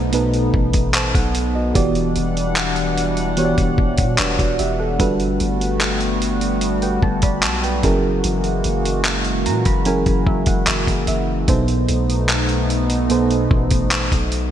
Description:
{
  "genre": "contemporary R&B",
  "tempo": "74 BPM",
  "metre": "4/4",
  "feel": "straight",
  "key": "E minor",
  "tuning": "A4 = 435 Hz",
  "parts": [
    { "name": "mellow FM electric piano", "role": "accompaniment", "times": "0.0-14.5 s", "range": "B2 to B5", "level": "-21 LUFS", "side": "right 2 dB", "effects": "chorus" },
    { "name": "chorused pulse-width pad", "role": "sustained chords", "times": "0.0-14.5 s", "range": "B2 to F#5", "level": "-23 LUFS", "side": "equal", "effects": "none" },
    { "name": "long sustained 808-style bass", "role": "bass", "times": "0.0-14.5 s", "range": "E1 to B2", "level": "-23 LUFS", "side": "equal", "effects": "none" },
    { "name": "dusty soul sampler-style drum kit", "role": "drums", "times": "0.1-14.5 s", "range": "handclaps, hi-hat, kick drum", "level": "-20 LUFS", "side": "equal", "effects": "gated reverb" }
  ],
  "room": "moderate lush hall reverb, RT60 2.9 s",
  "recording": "bright 1980s-style digital production",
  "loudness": "-16 LUFS",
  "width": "side -10 dB against mid",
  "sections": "0.0-14.5 A section",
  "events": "FM electric piano fill 9.1-11.5",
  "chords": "0.0 B7b9; 1.8 Em9; 5.0 Gmaj9; 7.8 F#9; 11.5 B7b9",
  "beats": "0.13 0.94 | 1.75 2.57 3.38 4.19 | 5.00 5.81 6.62 7.43 | 8.24 9.05 9.86 10.67 | 11.48 12.29 13.11 13.92"
}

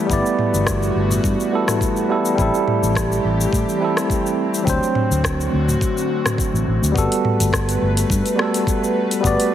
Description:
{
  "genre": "sunset chillout",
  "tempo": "105 BPM",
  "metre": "4/4",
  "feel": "swing 53% on 16ths",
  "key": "G major",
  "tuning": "A4 = 440 Hz",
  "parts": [
    { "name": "bright tine electric piano", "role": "accompaniment", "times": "0.0-9.5 s", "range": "F#3 to D5", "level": "-20 LUFS", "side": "right 1 dB", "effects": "auto-pan, tape echo" },
    { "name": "airy breathy pad", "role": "sustained chords", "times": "0.0-9.5 s", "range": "D3 to B4", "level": "-24 LUFS", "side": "left 1 dB", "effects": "chorus" },
    { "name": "fingered electric bass", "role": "bass", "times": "0.1-9.3 s", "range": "G1 to A2", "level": "-20 LUFS", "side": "equal", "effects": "none" },
    { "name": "electronic kick drum", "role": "drums", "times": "0.1-9.4 s", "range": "none", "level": "-23 LUFS", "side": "equal", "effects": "none" },
    { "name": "smooth R&B drum kit", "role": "drums", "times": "0.1-9.5 s", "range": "cabasa, hi-hat, rim click, toms", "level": "-24 LUFS", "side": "left 1 dB", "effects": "none" }
  ],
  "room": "moderate plate reverb, RT60 2.0 s",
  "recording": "heavily compressed radio sound",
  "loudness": "-16 LUFS",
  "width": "side -11 dB against mid",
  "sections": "0.0-7.0 A section; 7.0-9.5 B section",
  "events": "none",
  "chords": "0.0 G69; 2.4 Am7; 4.7 D7; 7.0 Gmaj9",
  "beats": "| 0.10 0.67 1.24 1.82 | 2.39 2.96 3.53 4.10 | 4.67 5.24 5.82 6.39 | 6.96 7.53 8.10 8.67 | 9.24"
}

